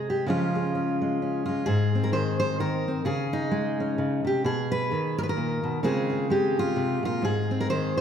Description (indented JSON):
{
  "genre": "folk, solo fingerstyle acoustic guitar",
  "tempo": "129 BPM",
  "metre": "3/4",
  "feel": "swing 59% on 8ths",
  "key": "unclear",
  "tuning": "A4 = 440 Hz",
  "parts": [
    { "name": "fingerpicked steel-string acoustic guitar", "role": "solo", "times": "0.0-8.0 s", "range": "Ab2 to C5", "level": "-24 LUFS", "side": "equal", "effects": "none" }
  ],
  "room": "wet scoring stage reverb, RT60 1.8 s",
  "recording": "recorded in a church or concert hall",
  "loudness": "-24 LUFS",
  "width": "side -8 dB against mid",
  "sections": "0.0-1.7 A section; 1.7-8.0 B section",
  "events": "none",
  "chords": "0.3 Db; 1.7 Ab; 3.1 Dbsus2; 4.4 Abm/Cb; 5.8 Dbmaj7; 7.2 Ab",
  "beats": "| 0.27 0.73 1.20 | 1.66 2.13 2.59 | 3.06 3.52 3.98 | 4.45 4.91 5.38 | 5.84 6.30 6.77 | 7.23 7.70"
}